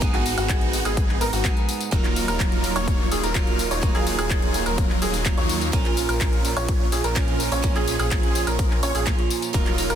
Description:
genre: EDM, festival progressive house.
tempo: 126 BPM.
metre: 4/4.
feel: straight.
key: unclear.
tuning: A4 = 440 Hz.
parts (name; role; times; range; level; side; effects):
picked steel-string acoustic guitar; accompaniment; 0.0-10.0 s; Ab2 to Ab4; -29 LUFS; right 6 dB; sidechain pumping, ping-pong delay.
bright baby grand piano; arpeggios; 0.0-10.0 s; Gb4 to Db5; -29 LUFS; right 1 dB; sidechain pumping, ping-pong delay.
supersaw chords; riff; 0.0-10.0 s; Gb3 to Db5; -27 LUFS; right 1 dB; phaser, sidechain pumping, ping-pong delay.
wide detuned saw bass; bass; 0.0-10.0 s; Eb1 to Eb2; -28 LUFS; left 1 dB; chorus, sidechain pumping.
big-room dance drum kit; drums; 0.0-10.0 s; handclaps, hi-hat, ride cymbal, tambourine, woodblock; -29 LUFS; left 1 dB; none.
electronic kick drum; drums; 0.0-9.6 s; none; -22 LUFS; left 1 dB; none.
room: little or no reverb.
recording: dense, heavily limited modern master.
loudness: -20 LUFS.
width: side -9 dB against mid.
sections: 0.0-10.0 A section.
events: none.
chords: 0.0 Abm; 1.9 Ebmadd9; 5.7 Bbm.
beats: | 0.02 0.49 0.97 1.45 | 1.92 2.40 2.88 3.35 | 3.83 4.30 4.78 5.26 | 5.73 6.21 6.68 7.16 | 7.64 8.11 8.59 9.07 | 9.54.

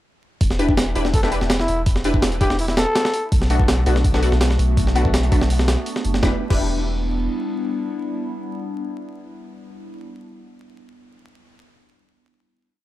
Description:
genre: drum and bass, jungle.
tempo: 165 BPM.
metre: 4/4.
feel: straight.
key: E minor.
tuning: A4 = 440 Hz.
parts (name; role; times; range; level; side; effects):
soft dub sub bass; bass; 0.4-7.3 s; E1 to B1; -21 LUFS; equal; none.
breakbeat sampler-style drum kit; drums; 0.4-6.6 s; crash cymbal, hi-hat, kick drum, snare drum; -20 LUFS; equal; none.
orchestra-hit-like synth stab; stabs; 0.6-10.6 s; A3 to B4; -24 LUFS; left 1 dB; built-in reverb, phaser, dub echo.
trumpet with bucket mute; melody; 1.1-3.3 s; E4 to A4; -25 LUFS; left 1 dB; dub echo.
warbly tape-like pad; sustained chords; 4.1-9.9 s; G3 to F#4; -28 LUFS; equal; chorus, built-in reverb, phaser.
room: little or no reverb.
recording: dry, gritty hardware recording, vinyl crackle.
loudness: -17 LUFS.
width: side -15 dB against mid.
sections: 0.4-6.2 drop; 6.2-9.1 final chord.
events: drop 0.4-6.2.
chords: 0.4 Em7; 3.3 Bm7; 6.2 Em7.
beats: | 0.41 0.77 1.13 1.50 | 1.86 2.23 2.59 2.95 | 3.32 3.68 4.04 4.41 | 4.77 5.13 5.50 5.86 | 6.22 6.59 6.95 7.32 | 7.68 8.04 8.41 8.77.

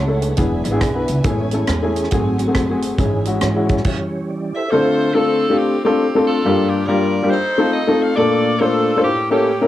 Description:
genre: uptempo gospel.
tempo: 138 BPM.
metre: 4/4.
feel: swing 63% on 8ths.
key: D minor from 4.7 s.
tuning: A4 = 440 Hz.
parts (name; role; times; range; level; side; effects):
mellow tonewheel organ; sustained chords; 0.0-5.4 s; E3 to E5; -24 LUFS; right 2 dB; slow rotary speaker, chorus vibrato.
warm studio string section; sustained chords; 0.0-3.8 s; G#4 to A5; -35 LUFS; right 1 dB; none.
upright bass; bass; 0.0-3.8 s; E1 to G#2; -22 LUFS; right 1 dB; none.
warm upright piano; accompaniment; 0.1-9.7 s; G2 to C5; -16 LUFS; left 2 dB; none.
tight funk drum kit; drums; 0.2-4.0 s; crash cymbal, hi-hat, kick drum, rim click; -22 LUFS; right 1 dB; cassette tape.
edgy saxophone section; melody; 4.5-9.7 s; Bb3 to F5; -20 LUFS; right 1 dB; cassette tape.
room: light reverb, small room ambience.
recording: home recording on cassette.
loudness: -15 LUFS.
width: side -13 dB against mid.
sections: 0.0-4.7 A section; 4.7-9.7 B section.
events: tonewheel organ solo 0.0-4.7; stop 3.9-4.7.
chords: 0.4 E7; 1.2 Amaj7; 2.1 G#7b9; 3.0 C#m/G#; 3.9 A7; 4.7 Dm7; 6.4 Gm7; 7.3 F7; 8.2 Bbmaj7; 9.0 A7b9.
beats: 0.38 0.81 | 1.25 1.68 2.11 2.55 | 2.98 3.42 3.85 4.29 | 4.72 5.15 5.58 6.02 | 6.45 6.88 7.31 7.75 | 8.18 8.61 9.04 9.47.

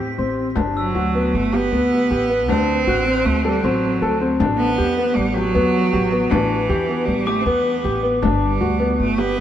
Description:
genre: contemporary instrumental, chamber music in an uneven meter.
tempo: 157 BPM.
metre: 5/4.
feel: straight.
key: A dorian.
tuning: A4 = 440 Hz.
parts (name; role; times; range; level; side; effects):
clear cello; melody; 0.0-9.4 s; A2 to C4; -21 LUFS; right 3 dB; none.
dark grand piano; arpeggios; 0.0-9.4 s; B3 to A4; -20 LUFS; left 2 dB; none.
glockenspiel with soft plastic mallets; texture; 0.0-4.2, 7.3-8.4 s; D6 to B6; -31 LUFS; right 1 dB; none.
upright bass; bass; 0.2-9.3 s; G1 to E2; -24 LUFS; equal; none.
frame drum; percussion; 0.2-9.4 s; none; -27 LUFS; left 7 dB; none.
room: wet huge ambient reverb, RT60 5.2 s.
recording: heard from further back in the room.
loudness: -16 LUFS.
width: side -10 dB against mid.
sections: 0.6-9.4 A section.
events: none.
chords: 0.0 Am; 0.6 Gmaj7; 2.5 D7; 4.4 A9sus4; 8.2 G.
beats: 0.19 | 0.57 0.95 1.34 1.72 2.11 | 2.49 2.87 3.26 3.64 4.02 | 4.40 4.79 5.17 5.55 5.93 | 6.32 6.70 7.08 7.46 7.84 | 8.22 8.61 8.99 9.37.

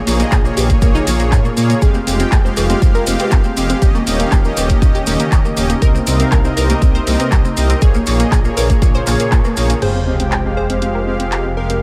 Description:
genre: progressive house.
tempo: 120 BPM.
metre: 4/4.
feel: straight.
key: F minor.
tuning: A4 = 440 Hz.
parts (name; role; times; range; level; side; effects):
evolving wavetable pad; sustained chords; 0.1-11.8 s; C3 to Ab4; -28 LUFS; equal; chorus, built-in reverb, sidechain pumping.
unison pluck; arpeggios; 0.1-11.8 s; Bb3 to C5; -25 LUFS; equal; cassette tape, sidechain pumping, delay.
soft supersaw; stabs; 0.1-11.8 s; Bb2 to G5; -23 LUFS; equal; sidechain pumping, delay.
dark detuned saw bass; bass; 0.1-11.8 s; Eb1 to Bb2; -21 LUFS; equal; sidechain pumping.
house drum kit; drums; 0.1-11.8 s; crash cymbal, handclaps, hi-hat; -26 LUFS; equal; sidechain pumping on hats, sidechain pumping on cymbals.
maracas; percussion; 0.1-9.8 s; none; -31 LUFS; equal; none.
woodblock, congas and cowbell; percussion; 0.1-9.5 s; none; -29 LUFS; equal; none.
electronic kick drum; drums; 0.3-9.4 s; none; -15 LUFS; equal; none.
plucky unison lead; melody; 9.8-11.8 s; Bb4 to C5; -27 LUFS; equal; sidechain pumping, delay.
sub drop; sound effects; 9.8-11.8 s; none; -26 LUFS; equal; none.
room: digital ambience.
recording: none.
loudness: -14 LUFS.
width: mono.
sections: 0.0-9.8 A section; 9.8-11.8 B section.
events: band accent 9.3; impact 9.8-11.8; filter sweep on ambient pad 9.8-11.8.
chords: 0.0 Bbm7; 1.8 Fmadd9; 3.8 Eb7; 5.8 Cm7; 7.8 Bbm7; 9.8 Fmadd9.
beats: 0.32 0.82 1.32 | 1.82 2.32 2.82 3.32 | 3.82 4.32 4.82 5.32 | 5.82 6.32 6.82 7.32 | 7.82 8.32 8.82 9.32 | 9.82 10.32 10.82 11.32 | 11.82.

